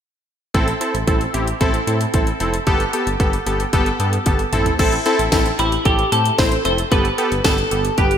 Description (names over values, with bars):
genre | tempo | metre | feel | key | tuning
synth-pop | 113 BPM | 4/4 | straight | A minor | A4 = 440 Hz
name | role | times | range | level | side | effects
warm analog keys | accompaniment | 0.5-8.1 s | B3 to C5 | -19 LUFS | equal | chorus
smooth synth bass | bass | 0.5-8.2 s | F1 to A2 | -23 LUFS | equal | none
house drum kit | drums | 0.5-8.2 s | crash cymbal, hi-hat, kick drum, snare drum, toms | -20 LUFS | equal | none
twelve-string electric guitar | melody | 5.6-8.2 s | E4 to C5 | -19 LUFS | equal | analog chorus
room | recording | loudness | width
moderate lush hall reverb, RT60 1.9 s | bright 1980s-style digital production | -16 LUFS | side -8 dB against mid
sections
0.5-4.8 A section; 4.8-8.2 B section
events
drum fill 4.3-4.8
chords
0.5 Am; 2.7 Gadd9; 4.5 Am; 6.9 Gadd9